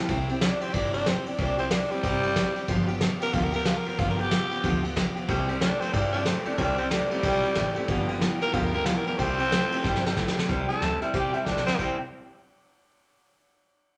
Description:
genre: rockabilly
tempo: 185 BPM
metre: 4/4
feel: swing 62% on 8ths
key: C major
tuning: A4 = 440 Hz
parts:
  - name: picked steel-string acoustic guitar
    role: accompaniment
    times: 0.0-12.0 s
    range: G2 to G4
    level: -32 LUFS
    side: equal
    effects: none
  - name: electric guitar through a small old amp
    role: riff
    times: 0.0-0.1, 5.3-12.0 s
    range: G2 to E4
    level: -35 LUFS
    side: equal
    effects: none
  - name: upright bass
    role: bass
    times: 0.1-12.0 s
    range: G1 to G2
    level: -37 LUFS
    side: equal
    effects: none
  - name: soft brush drum kit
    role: drums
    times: 0.1-11.9 s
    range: crash cymbal, hi-hat, kick drum, ride cymbal, snare drum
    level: -31 LUFS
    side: equal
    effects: none
  - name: growling tenor saxophone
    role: melody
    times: 0.4-12.0 s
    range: G3 to Bb4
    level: -31 LUFS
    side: equal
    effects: none
room: moderate large studio reverb, RT60 1.1 s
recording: none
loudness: -26 LUFS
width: mono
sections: 0.1-10.5 A section; 10.5-11.8 B section; 11.8-13.1 C section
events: drum fill 9.8-10.5, 11.5-11.8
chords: 0.1 C; 2.7 G7; 5.3 C; 7.9 G7; 9.2 C

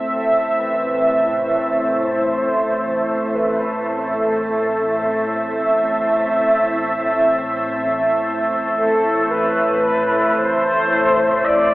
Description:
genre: dark ambient drone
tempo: free time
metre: none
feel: none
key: A minor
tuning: A4 = 441 Hz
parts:
  - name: mellow horn-like synth lead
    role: melody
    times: 0.0-11.7 s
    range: A4 to E5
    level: -20 LUFS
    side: equal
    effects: lush chorus, shimmer reverb, dub echo
  - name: dark analog pad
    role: sustained chords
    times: 0.0-11.7 s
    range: A3 to E5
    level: -19 LUFS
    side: right 1 dB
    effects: chorus, shimmer reverb
  - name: organ-like drone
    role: drone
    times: 0.2-11.7 s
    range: A1 to A2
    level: -23 LUFS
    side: equal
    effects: ensemble chorus, built-in reverb
  - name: flickering grainy texture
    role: texture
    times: 3.0-11.7 s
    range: C4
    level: -34 LUFS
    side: equal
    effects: none
room: wet echo chamber reverb, RT60 2.7 s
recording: echo-heavy mix, telephone sound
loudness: -16 LUFS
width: side -18 dB against mid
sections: 0.0-11.7 A section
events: fade-in on soft synth lead 0.0-11.7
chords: 0.0 Am

